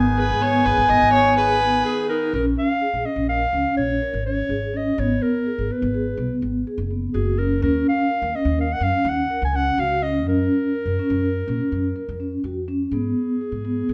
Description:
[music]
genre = contemporary instrumental, chamber music in an uneven meter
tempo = 250 BPM (eighths)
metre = 11/8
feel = straight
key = G# dorian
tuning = A4 = 441 Hz
[part]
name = dark clarinet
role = melody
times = 0.0-13.9 s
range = G#4 to G#5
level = -25 LUFS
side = equal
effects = none
[part]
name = hand-pumped harmonium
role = sustained chords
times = 0.0-2.3 s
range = D#3 to G#4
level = -33 LUFS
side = equal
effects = none
[part]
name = vibraphone with soft mallets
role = arpeggios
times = 0.0-13.9 s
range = B3 to A#4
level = -26 LUFS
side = equal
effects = none
[part]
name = upright bass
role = bass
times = 0.0-13.9 s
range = F#1 to A#2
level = -28 LUFS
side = equal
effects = none
[part]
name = dark viola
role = second line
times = 0.2-2.3 s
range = B4 to D#5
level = -26 LUFS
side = equal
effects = none
[sound]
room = wet recital hall reverb, RT60 1.3 s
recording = none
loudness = -21 LUFS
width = mono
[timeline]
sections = 0.0-2.3 A section; 2.3-12.9 B section; 12.9-13.9 C section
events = none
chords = 0.0 G#m; 2.3 A#m7; 5.0 G#m9; 7.6 D#m9; 10.3 F#maj7; 12.9 G#m

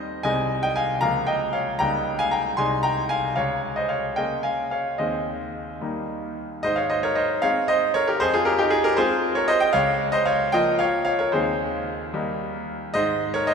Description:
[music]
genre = classical-period piano sonatina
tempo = 72-79 BPM (dotted quarters)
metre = 6/8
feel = rubato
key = Ab major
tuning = A4 = 439 Hz
[part]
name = bright concert grand piano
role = solo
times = 0.0-13.5 s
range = C2 to C6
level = -21 LUFS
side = equal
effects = none
[sound]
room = wet church reverb, RT60 4.1 s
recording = recorded in a church or concert hall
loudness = -21 LUFS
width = side -6 dB against mid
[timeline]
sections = 0.0-6.6 A section; 6.6-13.5 B section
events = none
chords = 0.2 Ab/C; 1.0 Bbm/Db; 1.8 Eb7/Db; 2.6 Ab/C; 3.4 Bbm7/Db; 5.0 Ab/Eb; 5.8 Eb; 6.6 Ab; 8.2 Fm; 9.7 Bbm/Db; 11.3 Ab/Eb; 12.1 Eb; 13.0 Ab

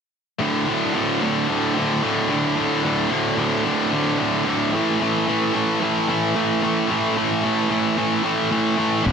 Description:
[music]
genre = rock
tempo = 111 BPM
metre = 4/4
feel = straight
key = unclear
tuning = A4 = 440 Hz
[part]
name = tight distorted guitar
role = riff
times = 0.4-9.1 s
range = D2 to A3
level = -22 LUFS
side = left 10 dB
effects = distortion
[part]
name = tight distorted guitar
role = riff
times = 0.4-9.1 s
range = D2 to A3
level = -21 LUFS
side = right 7 dB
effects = distortion
[part]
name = fuzz fingered electric bass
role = bass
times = 9.1 s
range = D1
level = -20 LUFS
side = left 1 dB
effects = overdrive
[sound]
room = moderate plate reverb, RT60 2.6 s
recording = none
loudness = -18 LUFS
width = side -6 dB against mid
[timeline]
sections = 0.4-9.1 A section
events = none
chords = 0.4 D5; 4.7 A5

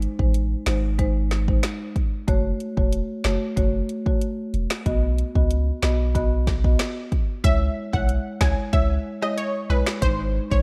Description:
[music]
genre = dancehall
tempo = 93 BPM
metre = 4/4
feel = straight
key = C# minor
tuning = A4 = 440 Hz
[part]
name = punchy sub bass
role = bass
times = 0.0-10.6 s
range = E1 to C#2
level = -25 LUFS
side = equal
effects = none
[part]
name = afro-pop drum kit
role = drums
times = 0.0-10.6 s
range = finger snaps, hi-hat, kick drum, rim click, snare drum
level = -26 LUFS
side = equal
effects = none
[part]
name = marimba with medium mallets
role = accompaniment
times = 0.2-10.6 s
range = G#3 to D#5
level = -30 LUFS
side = equal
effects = none
[part]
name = analog pluck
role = melody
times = 7.4-10.6 s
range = B4 to G#5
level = -30 LUFS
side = equal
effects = chorus, tape echo
[sound]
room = digital ambience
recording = none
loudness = -23 LUFS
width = mono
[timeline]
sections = 0.0-7.4 A section; 7.4-10.6 B section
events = none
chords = 0.0 G#; 2.3 F#m; 4.9 B; 7.4 C#m; 10.0 G#

